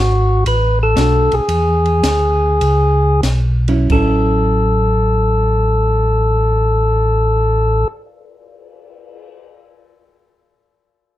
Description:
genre	soul jazz organ trio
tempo	87-123 BPM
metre	4/4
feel	swing 68% on 8ths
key	A major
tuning	A4 = 438 Hz
part	percussive tonewheel organ	melody	0.0-7.9 s	F#4 to B4	-16 LUFS	left 1 dB	overdrive, stopped rotary speaker, plate reverb
part	mellow tonewheel organ	bass	0.0-7.9 s	G#1 to E2	-15 LUFS	equal	chorus vibrato, slow rotary speaker
part	compact cocktail drum kit	drums	0.5-9.3 s	crash cymbal, cymbal swell, hi-hat, kick drum, ride cymbal, snare drum	-24 LUFS	equal	none
part	vintage hollow-body jazz guitar	accompaniment	1.0-7.9 s	F#3 to F#4	-21 LUFS	right 3 dB	none
room	light reverb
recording	dark, warm production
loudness	-12 LUFS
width	side -14 dB against mid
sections	0.0-3.9 A section; 3.9-9.4 B section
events	slowing down 0.0-3.9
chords	0.0 Bm7; 1.5 E7; 3.9 A6

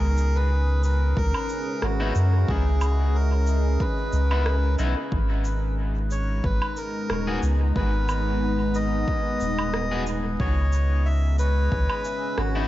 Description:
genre	ambient dub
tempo	91 BPM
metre	4/4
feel	swing 54% on 16ths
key	C# dorian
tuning	A4 = 440 Hz
part	melodica	melody	0.0-12.7 s	F#4 to E5	-30 LUFS	equal	dub echo
part	deep dark ambient pad	sustained chords	0.0-12.7 s	G#3 to A#5	-30 LUFS	left 1 dB	chorus, built-in reverb
part	soft dub sub bass	bass	0.0-12.7 s	D#1 to F#2	-22 LUFS	equal	tube saturation
part	electronic cabasa, woodblock and rim click	drums	0.2-12.5 s	none	-33 LUFS	right 1 dB	dub echo
part	electronic kick drum	drums	1.2-11.9 s	none	-28 LUFS	equal	overdrive
part	electric guitar at the edge of break-up	stabs	2.0-12.7 s	B3 to G#4	-35 LUFS	left 3 dB	spring reverb, dub echo
room	light reverb, digital ambience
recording	vinyl crackle, nothing above 7.6 kHz, faint mains hum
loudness	-21 LUFS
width	side -15 dB against mid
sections	0.0-12.7 A section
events	none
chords	0.0 C#m9; 5.1 G#m; 10.4 C#m9

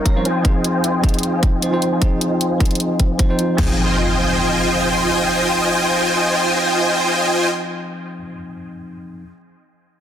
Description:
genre	future bass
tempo	153 BPM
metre	4/4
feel	half-time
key	F minor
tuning	A4 = 439 Hz
part	bell-like tine electric piano	accompaniment	0.0-9.2 s	F3 to Db5	-22 LUFS	equal	sidechain pumping, dub echo
part	supersaw chords	riff	0.0-7.5 s	Eb4 to Bb5	-18 LUFS	equal	ensemble chorus, sidechain pumping, low-pass filter, dub echo
part	electronic kick drum	drums	0.1-3.7 s	none	-17 LUFS	equal	none
part	trap drum kit	drums	0.1-3.7 s	crash cymbal, hi-hat	-25 LUFS	left 1 dB	none
part	impact	sound effects	3.6-8.2 s	none	-24 LUFS	equal	none
room	moderate lush hall reverb, RT60 1.8 s, digital ambience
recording	dense, heavily limited modern master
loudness	-15 LUFS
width	side -9 dB against mid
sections	0.0-3.6 A section; 3.6-6.7 B section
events	filter sweep on supersaw synth 0.0-3.6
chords	0.3 Fm7

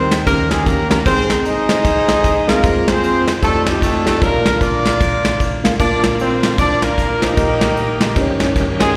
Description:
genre	uptempo gospel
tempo	152 BPM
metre	4/4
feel	swing 61% on 8ths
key	Eb major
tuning	A4 = 439 Hz
part	warm horn section	melody	0.0-9.0 s	G3 to Eb5	-19 LUFS	equal	slapback echo
part	mellow tine electric piano	accompaniment	0.0-8.9 s	Bb1 to F5	-22 LUFS	equal	slapback echo
part	soft brush drum kit	drums	0.1-8.9 s	kick drum, ride cymbal, snare drum	-20 LUFS	equal	none
part	bright tonewheel organ	sustained chords	5.8-8.9 s	G2 to G4	-27 LUFS	equal	none
room	light reverb, small room reverb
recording	live gig heard through the venue's PA, recital hall reverb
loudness	-15 LUFS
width	mono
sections	0.0-9.0 A section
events	none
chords	0.3 Eb7; 1.1 Ab; 2.6 Fm; 3.4 F13; 4.2 Bb; 7.4 Eb/Bb; 8.2 Eb7/G

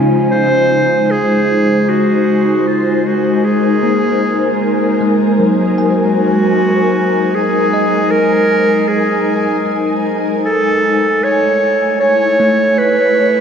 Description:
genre	ambient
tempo	77 BPM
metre	3/4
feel	straight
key	unclear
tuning	A4 = 439 Hz
part	ethereal airy pad	sustained chords	0.0-13.4 s	Db3 to Ab5	-15 LUFS	left 1 dB	ensemble chorus, built-in reverb
part	bell-like tine electric piano	arpeggios	0.0-13.4 s	Gb3 to Ab5	-20 LUFS	equal	medium stereo tremolo, diffuse ambient delay
part	rich studio cello section	bass	0.0-1.1 s	Db3	-23 LUFS	equal	none
part	glass harmonica	texture	0.0-1.1 s	Ab5	-28 LUFS	right 3 dB	none
part	warm clarinet	melody	0.3-13.4 s	F4 to C#5	-14 LUFS	right 1 dB	diffuse ambient delay
room	wet cathedral reverb, RT60 6.7 s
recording	dreamy mix soaked in reverb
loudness	-11 LUFS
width	side -7 dB against mid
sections	0.0-1.1 A section; 1.1-13.4 B section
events	none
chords	0.0 Dbmaj9; 1.1 Ab7; 10.4 Amaj7

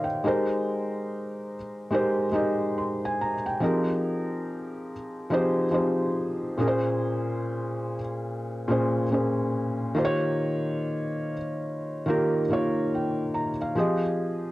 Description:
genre	hip hop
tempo	71 BPM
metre	4/4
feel	swing 59% on 16ths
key	F minor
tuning	A4 = 437 Hz
part	felt-muted upright piano	solo	0.0-14.5 s	Bb2 to C6	-25 LUFS	equal	cassette tape, low-pass filter
room	moderate small room reverb, RT60 0.6 s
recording	home recording on cassette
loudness	-24 LUFS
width	side -17 dB against mid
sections	0.0-14.5 A section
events	none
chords	0.2 Abmaj9; 3.6 Fm11; 6.6 Bbm7; 9.9 Eb9; 13.8 Fm9

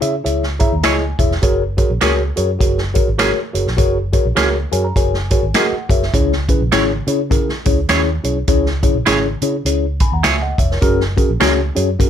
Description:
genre	uptempo 1960s-style soul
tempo	102 BPM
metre	4/4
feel	swing 60% on 8ths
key	C# dorian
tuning	A4 = 443 Hz
part	mellow tine electric piano	accompaniment	0.0-12.1 s	C#3 to B5	-18 LUFS	left 3 dB	slow stereo tremolo
part	vintage muted fingered electric bass	bass	0.0-12.1 s	E1 to C#3	-20 LUFS	equal	none
part	swinging big-band drum kit	drums	0.0-12.1 s	hi-hat, kick drum, snare drum	-18 LUFS	right 1 dB	none
part	semi-hollow electric guitar	stabs	0.8-11.5 s	A#3 to C#5	-18 LUFS	right 6 dB	slapback echo
part	finger snaps	percussion	0.8-11.6 s	none	-24 LUFS	left 2 dB	none
room	light reverb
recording	none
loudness	-14 LUFS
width	side -9 dB against mid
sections	0.0-12.1 A section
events	tine electric piano fill 0.3-1.4, 4.4-6.1, 9.9-10.8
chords	0.0 C#m; 1.4 F#add9; 6.1 C#m; 10.8 F#add9

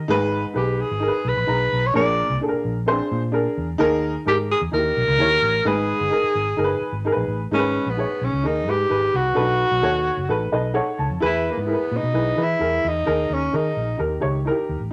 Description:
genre	uptempo 1960s-style soul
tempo	130 BPM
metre	4/4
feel	straight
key	G# harmonic minor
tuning	A4 = 439 Hz
part	dark upright piano	accompaniment	0.0-14.9 s	G#2 to A#5	-25 LUFS	equal	none
part	vintage muted fingered electric bass	bass	0.0-14.9 s	F#1 to E3	-28 LUFS	equal	none
part	breathy tenor saxophone	melody	0.6-14.0 s	A#3 to D5	-24 LUFS	equal	none
room	moderate studio reverb, RT60 0.8 s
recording	none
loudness	-21 LUFS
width	mono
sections	0.0-7.5 A section; 7.5-14.9 B section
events	upright piano fill 10.3-11.2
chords	0.1 G#m; 2.0 A#7; 3.8 D#sus4; 4.7 D#; 5.7 G#m; 9.4 B7; 11.2 E; 13.1 D#sus4; 14.0 D#

